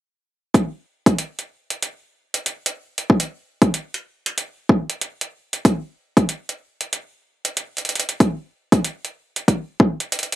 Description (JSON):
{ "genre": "glitch hop", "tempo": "94 BPM", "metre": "4/4", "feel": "swing 63% on 16ths", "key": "none", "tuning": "none", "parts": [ { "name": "electronic hi-hat", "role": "drums", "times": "0.5-10.4 s", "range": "none", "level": "-23 LUFS", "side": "right 2 dB", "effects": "overdrive" }, { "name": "electronic kick drum", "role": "drums", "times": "0.5-10.0 s", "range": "none", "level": "-15 LUFS", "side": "equal", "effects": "overdrive, high-pass filter on kick, high-pass filter on room" } ], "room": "little or no reverb", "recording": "none", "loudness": "-20 LUFS", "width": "side -15 dB against mid", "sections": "0.5-10.4 A section", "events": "none", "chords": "none", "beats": "| 0.54 1.18 1.82 2.46 | 3.10 3.74 4.37 5.01 | 5.65 6.29 6.93 7.57 | 8.20 8.84 9.48 10.12" }